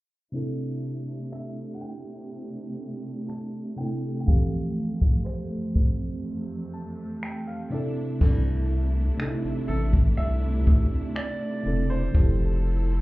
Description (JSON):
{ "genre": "contemporary R&B", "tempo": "61 BPM", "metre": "4/4", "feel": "straight", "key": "C major", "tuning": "A4 = 440 Hz", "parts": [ { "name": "mellow FM electric piano", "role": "accompaniment", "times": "0.3-13.0 s", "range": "C3 to A5", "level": "-32 LUFS", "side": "equal", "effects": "chorus" }, { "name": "warm symphonic string section", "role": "sustained chords", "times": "0.3-13.0 s", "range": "F2 to A4", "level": "-33 LUFS", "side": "right 2 dB", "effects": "sidechain pumping" }, { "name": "bright baby grand piano", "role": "melody", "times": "1.3-13.0 s", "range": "A4 to A5", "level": "-39 LUFS", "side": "right 1 dB", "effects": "ping-pong delay" }, { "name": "jazz brush drum kit", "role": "drums", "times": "1.3-12.4 s", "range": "crash cymbal, finger snaps, kick drum", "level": "-22 LUFS", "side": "equal", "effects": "none" }, { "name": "rubbery square bass", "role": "bass", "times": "8.2-13.0 s", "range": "E1 to D2", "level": "-24 LUFS", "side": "equal", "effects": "none" } ], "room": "small room ambience", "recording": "heard muffled through a wall, club reverb, EQ, low-pass filter", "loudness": "-24 LUFS", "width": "side -19 dB against mid", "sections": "0.3-8.2 A section; 8.2-13.0 B section", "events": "filter sweep 0.3-8.2; break 6.2-8.2; FM electric piano fill 6.2-8.2; hi-hats muted 8.2-13.0", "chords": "0.3 C69; 4.3 Fmaj7; 7.7 C69; 12.1 Fmaj7" }